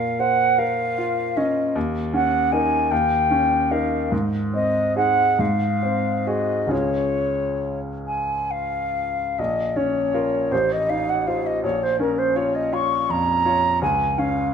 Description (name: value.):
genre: classical, romantic duo for flute and grand piano.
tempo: 44-56 BPM (dotted quarters).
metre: 6/8.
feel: rubato.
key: Db major, Bb minor from 9.4 s.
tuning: A4 = 440 Hz.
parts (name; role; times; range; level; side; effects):
silver concert flute; melody; 0.0-14.5 s; Bb4 to Db6; -21 LUFS; equal; none.
bright grand piano; accompaniment; 0.0-14.5 s; A1 to Db5; -23 LUFS; equal; none.
room: moderate recital hall reverb, RT60 1.7 s.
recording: close, detailed microphones.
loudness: -19 LUFS.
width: side -7 dB against mid.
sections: 0.0-9.4 A section; 9.4-14.5 B section.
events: none.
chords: 0.0 Bbm; 1.8 Eb5; 4.1 Ab; 5.4 Ab7; 6.7 Db; 9.4 Bbm; 10.5 F7/A; 11.6 Bbm; 13.8 Db.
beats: 0.58 | 1.76 2.91 | 4.12 5.40 | 6.71 8.07 | 9.39 10.52 | 11.64 12.72 | 13.81.